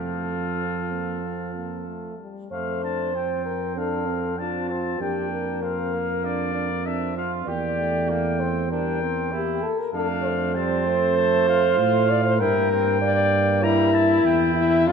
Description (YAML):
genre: classical, brass quintet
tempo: 97 BPM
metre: 4/4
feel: straight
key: F major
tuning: A4 = 443 Hz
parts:
  - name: clear cornet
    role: melody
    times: 0.0-14.9 s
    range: F4 to Bb5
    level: -30 LUFS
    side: left 7 dB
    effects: none
  - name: warm flugelhorn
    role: second line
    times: 0.0-14.9 s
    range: G3 to A4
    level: -31 LUFS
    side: right 8 dB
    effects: none
  - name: mellow trombone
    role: accompaniment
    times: 0.0-14.9 s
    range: F3 to D4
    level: -32 LUFS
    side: right 3 dB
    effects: none
  - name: warm French horn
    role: accompaniment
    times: 0.0-14.9 s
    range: G3 to D5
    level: -24 LUFS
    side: left 2 dB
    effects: none
  - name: mellow tuba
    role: bass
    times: 0.0-14.9 s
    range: E2 to A2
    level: -27 LUFS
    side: right 4 dB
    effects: none
room: moderate scoring stage reverb, RT60 2.0 s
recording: none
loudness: -21 LUFS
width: side -6 dB against mid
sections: 0.0-2.5 A section; 2.5-14.9 B section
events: none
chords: 0.0 F; 5.0 Gm7/F; 7.5 C7/E; 9.9 F; 12.4 Edim/G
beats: 0.59 1.23 1.88 | 2.51 3.14 3.77 4.38 | 5.00 5.62 6.24 6.86 | 7.47 8.09 8.71 9.32 | 9.94 10.55 11.17 11.79 | 12.40 13.02 13.63 14.24 | 14.86